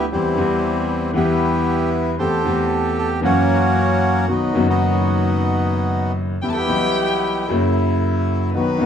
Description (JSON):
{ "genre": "tango", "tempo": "114 BPM", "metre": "4/4", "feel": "rubato", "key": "E harmonic minor", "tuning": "A4 = 440 Hz", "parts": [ { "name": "bandoneon", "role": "melody", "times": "0.0-8.9 s", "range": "D#3 to C5", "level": "-20 LUFS", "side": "right 1 dB", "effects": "none" }, { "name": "warm concert grand piano", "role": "accompaniment", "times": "0.0-8.9 s", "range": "F#1 to G4", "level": "-18 LUFS", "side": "left 1 dB", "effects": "none" }, { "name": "warm violin", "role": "second line", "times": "6.4-8.9 s", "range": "B4 to A5", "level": "-25 LUFS", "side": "left 2 dB", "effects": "slapback echo" } ], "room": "moderate studio reverb, RT60 0.9 s", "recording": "small room ambience", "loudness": "-16 LUFS", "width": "side -8 dB against mid", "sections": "0.0-8.9 A section", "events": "none", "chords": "0.1 C/E; 1.1 Em; 2.2 Am7/E; 3.2 F#7; 4.3 B; 6.4 Em; 7.5 F#7" }